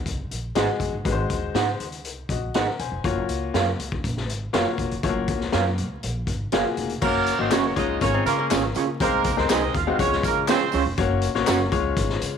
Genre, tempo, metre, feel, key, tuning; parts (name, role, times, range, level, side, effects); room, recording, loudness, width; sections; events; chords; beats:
uptempo 1960s-style soul; 121 BPM; 4/4; straight; A4 = 438 Hz
upright bass; bass; 0.1-12.4 s; Fb1 to Db3; -29 LUFS; equal
raw garage drum kit; drums; 0.1-12.3 s; crash cymbal, hi-hat, kick drum, snare drum; -27 LUFS; left 3 dB
bright upright piano; accompaniment; 0.6-12.4 s; Ab3 to Ab5; -26 LUFS; left 8 dB
electric guitar through a small old amp; stabs; 0.6-11.6 s; C4 to Gb5; -26 LUFS; right 10 dB
clear horn section; second line; 7.0-10.8 s; Bb3 to F5; -25 LUFS; right 12 dB
tambourine and handclaps; percussion; 7.0-12.3 s; -35 LUFS; left 3 dB
archtop guitar, miked and amplified; riff; 8.0-9.0 s; Bb3 to F4; -28 LUFS; left 9 dB
light reverb, small room ambience; 1960s-style stereo with parts hard left and right, vinyl crackle; -21 LUFS; side -7 dB against mid
0.0-7.0 A section; 7.0-12.4 B section
0.0 Ab7; 3.0 Gbmaj7; 7.0 Gb; 7.8 Db; 9.0 Ab/C; 10.0 Db; 11.0 Gb; 11.7 Db
0.05 0.55 | 1.05 1.55 2.05 2.54 | 3.04 3.54 4.04 4.54 | 5.03 5.53 6.03 6.53 | 7.02 7.52 8.01 8.51 | 9.00 9.50 9.99 10.49 | 10.98 11.48 11.97